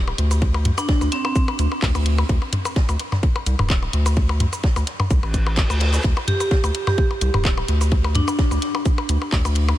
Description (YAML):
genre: minimal techno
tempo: 128 BPM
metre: 4/4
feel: swing 54% on 16ths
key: unclear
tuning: A4 = 440 Hz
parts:
  - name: round analog bass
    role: bass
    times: 0.0-9.7 s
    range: D1 to D2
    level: -20 LUFS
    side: equal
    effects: sidechain pumping
  - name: electronic percussion blips and toms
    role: percussion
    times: 0.1-9.8 s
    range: none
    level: -26 LUFS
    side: left 2 dB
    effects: analog delay
  - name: garage drum kit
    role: drums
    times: 0.2-9.7 s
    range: handclaps, hi-hat, shaker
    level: -30 LUFS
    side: right 1 dB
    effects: none
  - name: open jazz drum kit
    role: drums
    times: 0.2-9.7 s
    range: hi-hat, ride cymbal, snare drum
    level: -36 LUFS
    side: left 1 dB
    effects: high-pass filter on cymbals, high-pass filter on hats, high-pass filter on snare, high-pass filter on room
  - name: electronic kick drum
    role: drums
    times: 0.4-9.4 s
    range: none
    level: -20 LUFS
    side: equal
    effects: none
  - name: vibraphone with hard mallets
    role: melody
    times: 0.8-1.3, 6.3-8.8 s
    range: C4 to G4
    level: -26 LUFS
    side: right 1 dB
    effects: analog delay
  - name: reverse cymbal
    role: sound effects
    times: 5.3-6.0 s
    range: none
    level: -32 LUFS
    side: equal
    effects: none
room: light reverb, small room ambience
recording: none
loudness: -18 LUFS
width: side -14 dB against mid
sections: 0.0-9.8 A section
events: reverse cymbal 5.3-6.0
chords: 0.0 D5